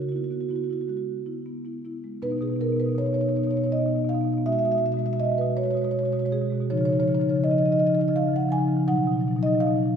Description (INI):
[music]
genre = classical, contemporary piece for solo marimba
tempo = 54 BPM (dotted quarters)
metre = 6/8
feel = straight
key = B lydian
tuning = A4 = 439 Hz
[part]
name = marimba with soft mallets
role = solo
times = 0.0-10.0 s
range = B2 to G#5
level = -22 LUFS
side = equal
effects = none
[sound]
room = wet scoring stage reverb, RT60 1.8 s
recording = heard from further back in the room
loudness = -22 LUFS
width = side -7 dB against mid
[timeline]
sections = 0.0-2.2 A section; 2.2-10.0 B section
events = none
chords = 0.0 C#m7 (rootless); 2.2 Badd9; 4.5 F#11/B; 6.7 C#add9; 8.9 B